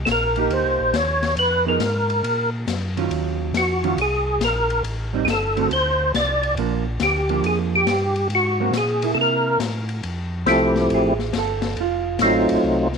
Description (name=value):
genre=soul jazz organ trio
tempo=139 BPM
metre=4/4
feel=swing 67% on 8ths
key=unclear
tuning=A4 = 440 Hz
part: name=mellow tonewheel organ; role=bass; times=0.0-13.0 s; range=F1 to C3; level=-26 LUFS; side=equal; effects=overdrive, chorus vibrato, slow rotary speaker
part: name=percussive tonewheel organ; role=melody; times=0.1-12.9 s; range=F3 to D5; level=-19 LUFS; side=left 1 dB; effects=slow rotary speaker, chorus vibrato
part: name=open jazz drum kit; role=drums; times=0.1-13.0 s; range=hi-hat, ride cymbal, snare drum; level=-29 LUFS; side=left 7 dB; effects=none
part: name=hollow-body jazz guitar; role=accompaniment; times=0.4-12.6 s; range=D3 to A4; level=-25 LUFS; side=right 13 dB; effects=none
room=light reverb, small room ambience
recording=1960s-style stereo with parts hard left and right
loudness=-18 LUFS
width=side -5 dB against mid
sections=0.0-10.0 A section; 10.0-13.0 B section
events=hollow-body jazz guitar solo 10.0-13.0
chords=0.0 Cm7; 1.4 Fm7b5; 2.2 Bbm; 3.1 Ebm9; 4.8 Am7b5; 5.7 Csus2; 6.6 Gm7; 8.3 Ab9; 9.2 C6; 10.0 Fmaj9; 11.8 F7b9